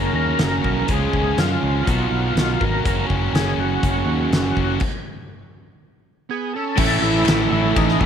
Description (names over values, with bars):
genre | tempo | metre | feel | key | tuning
classic rock | 122 BPM | 4/4 | straight | F# major | A4 = 440 Hz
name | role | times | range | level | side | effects
overdriven tonewheel organ | melody | 0.0-8.1 s | D#4 to A#4 | -24 LUFS | left 1 dB | slow rotary speaker, chorus vibrato
distorted electric guitar | riff | 0.0-8.1 s | F#2 to F#4 | -24 LUFS | right 10 dB | distortion
tight distorted guitar | riff | 0.0-8.1 s | F#2 to F#4 | -26 LUFS | left 12 dB | distortion
growling fingered electric bass | bass | 0.0-8.1 s | F#1 to F#2 | -23 LUFS | left 1 dB | overdrive
huge arena drum kit | drums | 0.4-8.1 s | crash cymbal, hi-hat, kick drum, ride cymbal, snare drum | -23 LUFS | left 1 dB | none
fuzz lead guitar | second line | 6.3-8.1 s | E3 to C#4 | -27 LUFS | right 12 dB | distortion
tonewheel organ | sustained chords | 6.8-8.1 s | C#4 to C#5 | -33 LUFS | equal | none
overdriven electric guitar | riff | 6.8-8.1 s | A2 to A3 | -24 LUFS | equal | none
group handclap | percussion | 7.3-7.4 s | none | -32 LUFS | left 14 dB | none
room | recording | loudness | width
light reverb, small room ambience | 1960s-style stereo with parts hard left and right | -17 LUFS | side -8 dB against mid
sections
0.0-6.8 A section; 6.8-8.1 B section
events
stop 4.8-6.8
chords
0.0 F#; 0.9 C#; 1.9 B; 2.8 F#; 4.8 N.C.; 6.8 A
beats
0.39 | 0.88 1.37 1.86 2.36 | 2.85 3.34 3.83 4.32 | 4.81 5.30 5.79 6.28 | 6.77 7.26 7.75